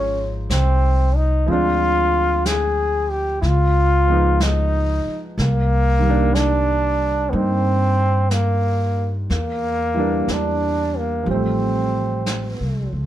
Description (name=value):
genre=jazz ballad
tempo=61 BPM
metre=4/4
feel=swing 67% on 8ths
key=C minor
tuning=A4 = 440 Hz
part: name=bright trombone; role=melody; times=0.0-12.9 s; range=Bb3 to Ab4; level=-21 LUFS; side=equal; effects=none
part: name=clear concert grand piano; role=accompaniment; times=0.0-13.1 s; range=Eb3 to C5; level=-25 LUFS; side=right 1 dB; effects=none
part: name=upright bass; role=bass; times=0.0-13.1 s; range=Ab1 to G2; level=-20 LUFS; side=equal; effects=none
part: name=jazz brush drum kit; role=drums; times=0.5-13.1 s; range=brushed snare drum, hi-hat, snare drum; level=-31 LUFS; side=right 1 dB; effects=none
room=little or no reverb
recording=none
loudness=-17 LUFS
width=side -12 dB against mid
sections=0.0-13.1 A section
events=none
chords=0.0 Dbmaj9; 1.5 Dm7b5; 3.4 Db9; 5.4 Cm9; 9.3 Em7b5; 11.3 Am7b13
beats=0.50 | 1.48 2.46 3.43 4.41 | 5.38 6.36 7.33 8.31 | 9.30 10.28 11.27 12.26